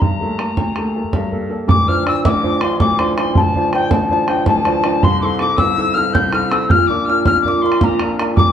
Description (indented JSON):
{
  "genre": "celtic folk, Celtic slip jig",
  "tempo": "108 BPM (dotted quarters)",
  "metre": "9/8",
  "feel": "straight",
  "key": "D minor",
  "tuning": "A4 = 435 Hz",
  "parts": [
    { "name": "small celesta", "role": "melody", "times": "0.0-8.5 s", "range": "G5 to G6", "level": "-19 LUFS", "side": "left 2 dB", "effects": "tape echo" },
    { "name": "reedy wooden whistle", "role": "second line", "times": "0.0-8.5 s", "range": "G5 to G6", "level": "-22 LUFS", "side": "left 4 dB", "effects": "none" },
    { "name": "clear upright piano", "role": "accompaniment", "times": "0.0-8.5 s", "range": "D1 to C5", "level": "-18 LUFS", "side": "right 1 dB", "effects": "none" },
    { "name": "bodhran", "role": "percussion", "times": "0.0-8.5 s", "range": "none", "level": "-18 LUFS", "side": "right 2 dB", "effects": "none" }
  ],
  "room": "wet studio reverb, RT60 0.9 s",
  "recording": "heard from further back in the room",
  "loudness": "-13 LUFS",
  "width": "side -9 dB against mid",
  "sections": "0.0-1.7 A section; 1.7-8.5 B section",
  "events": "none",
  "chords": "0.0 Gmadd9; 1.7 Dm7; 5.0 C6; 6.7 Bb",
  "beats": "| 0.01 0.57 1.13 | 1.69 2.24 2.80 | 3.36 3.92 4.47 | 5.03 5.59 6.14 | 6.70 7.26 7.82 | 8.38"
}